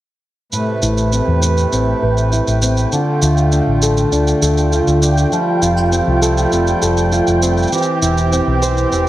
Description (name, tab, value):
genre	folktronica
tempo	100 BPM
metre	4/4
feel	straight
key	unclear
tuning	A4 = 437 Hz
part	hand-pumped harmonium	sustained chords	0.5-9.1 s	C3 to B4	-20 LUFS	right 2 dB	none
part	nylon-string guitar	arpeggios	0.5-9.1 s	A2 to C5	-17 LUFS	equal	low-pass filter, tape echo
part	shaker	drums	0.5-9.0 s	none	-23 LUFS	right 2 dB	none
part	flickering grainy texture	texture	1.3-9.1 s	G5	-25 LUFS	right 3 dB	built-in reverb
part	fingered electric bass	bass	0.8-9.1 s	E1 to E2	-16 LUFS	equal	none
room	moderate plate reverb, RT60 1.4 s, studio ambience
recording	none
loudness	-13 LUFS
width	side -14 dB against mid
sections	0.5-9.1 A section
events	filter sweep on fingered electric bass 0.5-9.1; filter sweep on nylon-string guitar 0.5-9.1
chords	0.5 Amadd9; 2.9 Dm; 5.3 Fadd9; 7.7 C/E